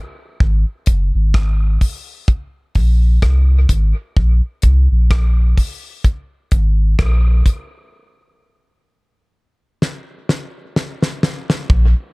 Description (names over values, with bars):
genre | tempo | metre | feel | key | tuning
dub reggae | 64 BPM | 4/4 | swing 56% on 16ths | unclear | A4 = 440 Hz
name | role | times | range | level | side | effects
warm sub bass | bass | 0.4-11.9 s | Gb1 to C2 | -13 LUFS | equal | none
damped 70s drum kit | drums | 0.4-11.9 s | hi-hat, kick drum, rim click, snare drum | -16 LUFS | equal | none
room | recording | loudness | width
studio reverb | echo-heavy mix | -14 LUFS | side -29 dB against mid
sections
0.0-11.7 A section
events
break 7.9-11.7; drum fill 9.8-11.7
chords
none